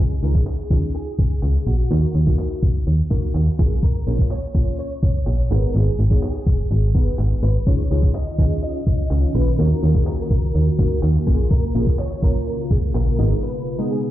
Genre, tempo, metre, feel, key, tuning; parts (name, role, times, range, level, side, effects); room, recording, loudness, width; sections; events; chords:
dance-pop; 125 BPM; 4/4; straight; A4 = 440 Hz
direct-recorded clean electric guitar; melody; 0.0-14.1 s; Gb4 to Eb5; -31 LUFS; right 1 dB; ensemble chorus, dub echo
wavetable chord stab; accompaniment; 0.0-14.1 s; Ab3 to Db5; -29 LUFS; left 1 dB; phaser, sidechain pumping
slap-like FM bass; bass; 0.0-13.3 s; Gb1 to Eb2; -19 LUFS; equal; sidechain pumping
detuned 8-bit digital drum machine; drums; 0.3-13.3 s; handclaps, hi-hat, kick drum; -20 LUFS; equal
glassy FM pad; sustained chords; 8.2-14.1 s; Db3 to Gb4; -26 LUFS; equal; ensemble chorus, built-in reverb, sidechain pumping
little or no reverb; played on a big sound system in a bare room, large studio reverb, low-pass filter; -17 LUFS; side -14 dB against mid
0.0-14.1 A section
break 13.4-14.1
0.0 Dbadd9; 1.9 Ebm; 3.6 Bbm; 5.5 Abm; 7.7 Dbadd9; 9.6 Ebm; 11.3 Bbm; 13.2 Abm